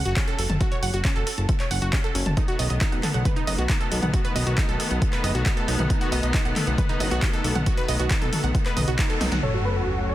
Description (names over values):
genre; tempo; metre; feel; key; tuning
uplifting trance; 136 BPM; 4/4; straight; unclear; A4 = 440 Hz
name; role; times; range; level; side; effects
fat analog bass; bass; 0.0-10.1 s; F#1 to B1; -25 LUFS; equal; sidechain pumping
analog pluck; arpeggios; 0.1-9.4 s; C#4 to A5; -29 LUFS; right 3 dB; chorus, sidechain pumping, digital delay
punchy analog drum machine; drums; 0.1-9.4 s; handclaps, hi-hat, snare drum, toms; -28 LUFS; left 1 dB; overdrive, low-pass filter on snare, sidechain pumping on hats, low-pass filter on hats, sidechain pumping on toms, low-pass filter on toms, low-pass filter on room
electronic kick drum; drums; 0.2-9.1 s; none; -24 LUFS; equal; overdrive
bright studio string section; sustained chords; 2.4-10.1 s; D#3 to C#4; -30 LUFS; left 3 dB; sidechain pumping, low-pass filter
supersaw chords; melody; 9.4-10.1 s; F#4 to C#5; -28 LUFS; right 1 dB; cassette tape, sidechain pumping, low-pass filter, digital delay
felt-muted upright piano; second line; 9.4-10.1 s; A4; -32 LUFS; left 6 dB; digital delay
plucky unison lead; second line; 9.4-10.1 s; F#4 to C#5; -36 LUFS; equal; none
sub drop; sound effects; 9.4-10.1 s; none; -28 LUFS; equal; none
room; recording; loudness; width
little or no reverb; dense, heavily limited modern master; -21 LUFS; side -14 dB against mid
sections
0.0-9.4 A section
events
band accent 9.0; drum fill 9.2; impact 9.4-10.1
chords
0.0 F#m; 2.4 B7; 9.4 F#m